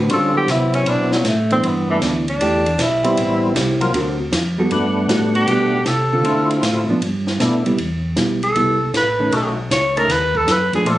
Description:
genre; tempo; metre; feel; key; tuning
soul jazz organ trio; 156 BPM; 4/4; swing 67% on 8ths; G major; A4 = 439 Hz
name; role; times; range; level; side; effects
hollow-body jazz guitar; accompaniment; 0.0-11.0 s; D3 to A#4; -20 LUFS; right 1 dB; none
mellow tonewheel organ; bass; 0.0-11.0 s; A1 to D3; -22 LUFS; equal; chorus vibrato, slow rotary speaker
mellow tenor saxophone; melody; 0.1-11.0 s; E3 to C#5; -18 LUFS; equal; none
percussive tonewheel organ; melody; 0.1-11.0 s; F#3 to F#5; -20 LUFS; left 1 dB; slow rotary speaker, overdrive, chorus vibrato
compact cocktail drum kit; drums; 0.1-11.0 s; hi-hat, kick drum, ride cymbal, snare drum; -24 LUFS; equal; none
room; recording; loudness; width
moderate studio reverb, RT60 0.8 s; recorded on a phone in the room, club reverb, nothing above 10.3 kHz; -15 LUFS; side -15 dB against mid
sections
0.0-7.8 A section; 7.8-11.0 A section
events
tenor saxophone solo 0.0-11.0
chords
0.1 D13; 1.6 G6; 2.4 Em7; 3.2 Am7; 3.9 D7alt; 4.7 Gmaj9; 6.2 Dm7; 7.0 G; 7.8 Cmaj7; 9.3 B9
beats
| 0.10 0.48 0.86 1.25 | 1.63 2.02 2.40 2.79 | 3.17 3.56 3.94 4.32 | 4.71 5.09 5.48 5.86 | 6.25 6.63 7.01 7.40 | 7.78 8.17 8.55 8.94 | 9.32 9.71 10.09 10.47 | 10.86

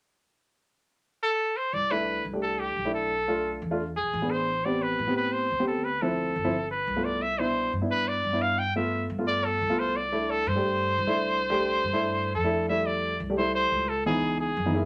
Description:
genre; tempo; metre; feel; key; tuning
Afro-Cuban jazz; 175 BPM; 4/4; straight; C major; A4 = 440 Hz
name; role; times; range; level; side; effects
clear trumpet; melody; 1.2-14.9 s; G4 to G5; -29 LUFS; equal; none
upright bass; bass; 1.7-14.9 s; G1 to A2; -37 LUFS; equal; none
dark upright piano; accompaniment; 1.9-14.9 s; B2 to G#4; -32 LUFS; equal; none
room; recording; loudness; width
moderate studio reverb, RT60 0.6 s; none; -27 LUFS; mono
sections
0.4-1.7 A section; 1.7-12.7 B section; 12.7-14.9 C section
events
none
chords
0.4 N.C.; 1.7 C69; 3.1 Bm7b5; 3.8 E7; 4.5 Am9; 5.9 Dm9; 6.5 G7; 7.2 Cmaj9; 8.6 G7; 10.0 C69; 12.7 Fmaj9; 14.1 Dbm7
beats
| 0.37 0.71 1.05 1.40 | 1.74 2.08 2.43 2.77 | 3.11 3.46 3.80 4.14 | 4.48 4.83 5.17 5.51 | 5.85 6.19 6.54 6.88 | 7.22 7.56 7.90 8.25 | 8.59 8.93 9.27 9.62 | 9.96 10.30 10.64 10.98 | 11.33 11.67 12.01 12.35 | 12.69 13.04 13.38 13.72 | 14.06 14.40 14.75

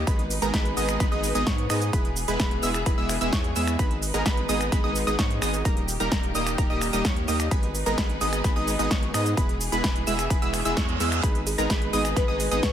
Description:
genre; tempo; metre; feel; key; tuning
EDM, festival progressive house; 129 BPM; 4/4; straight; G# harmonic minor; A4 = 440 Hz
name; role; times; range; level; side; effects
rich studio string section; sustained chords; 0.0-12.7 s; D#3 to B4; -33 LUFS; equal; sidechain pumping
wide unison pluck; arpeggios; 0.0-12.7 s; A#5 to E6; -31 LUFS; equal; sidechain pumping, digital delay
supersaw stab; riff; 0.0-12.7 s; G3 to E5; -28 LUFS; right 1 dB; sidechain pumping, digital delay
saturated sub bass; bass; 0.0-12.7 s; D#1 to G#2; -30 LUFS; equal; sidechain pumping
big-room dance drum kit; drums; 0.1-12.7 s; cabasa, finger snaps, hi-hat, ride cymbal, snare drum; -30 LUFS; equal; overdrive
electronic kick drum; drums; 0.1-12.7 s; none; -25 LUFS; equal; none
reverse cymbal; sound effects; 10.5-11.2 s; none; -33 LUFS; right 6 dB; none
kalimba; melody; 11.5-12.7 s; G#4 to B4; -30 LUFS; left 2 dB; digital delay
room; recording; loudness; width
digital ambience; none; -22 LUFS; side -10 dB against mid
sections
0.0-12.7 A section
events
reverse cymbal 10.5-11.2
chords
0.1 G#m; 1.9 E; 3.8 G#m; 5.7 D#; 7.5 G#m; 9.4 E; 11.2 G#m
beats
| 0.07 0.54 1.00 1.47 | 1.93 2.40 2.86 3.33 | 3.79 4.26 4.72 5.19 | 5.65 6.12 6.58 7.05 | 7.51 7.98 8.44 8.91 | 9.37 9.84 10.30 10.77 | 11.23 11.70 12.16 12.63

